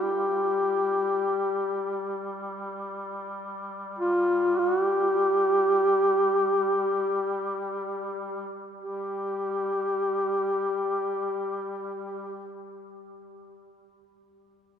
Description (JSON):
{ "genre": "caucasian folk, Caucasian lament", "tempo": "free time", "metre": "none", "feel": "none", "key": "unclear", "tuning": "A4 = 442 Hz", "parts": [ { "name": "mellow duduk", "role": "melody", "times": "0.0-12.5 s", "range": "F4 to G4", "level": "-25 LUFS", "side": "left 1 dB", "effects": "none" }, { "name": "warm duduk", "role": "drone", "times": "0.0-12.5 s", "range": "G3", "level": "-36 LUFS", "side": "equal", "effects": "none" } ], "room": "moderate cathedral reverb, RT60 5.0 s", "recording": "minimal, uncompressed stereo recording", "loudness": "-24 LUFS", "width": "side -8 dB against mid", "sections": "0.0-8.8 A section; 8.8-12.6 B section", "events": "slowing down 1.2-8.8", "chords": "none" }